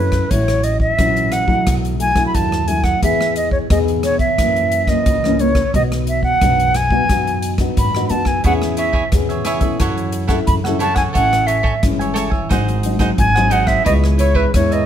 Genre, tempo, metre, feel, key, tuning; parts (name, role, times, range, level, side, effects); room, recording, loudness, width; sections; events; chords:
samba and choro; 89 BPM; 4/4; straight; E major; A4 = 440 Hz
concert flute; melody; 0.0-14.9 s; B4 to B5; -18 LUFS; right 2 dB
nylon-string guitar; accompaniment; 0.0-14.9 s; F#2 to A4; -21 LUFS; left 3 dB
upright bass; bass; 0.0-14.9 s; G1 to G#2; -20 LUFS; equal
swinging big-band drum kit; drums; 0.1-14.9 s; hi-hat, kick drum, rim click; -21 LUFS; equal
cavaquinho; accompaniment; 8.4-14.9 s; D#4 to G#5; -23 LUFS; right 4 dB
light reverb; -14 LUFS; side -10 dB against mid
0.0-14.9 A section
0.3 A6; 1.7 B7sus4; 3.0 Emaj7; 4.4 F#7; 5.7 B; 8.4 E6; 9.8 F#m7; 11.1 Amaj7; 12.5 G#7; 13.9 C#m7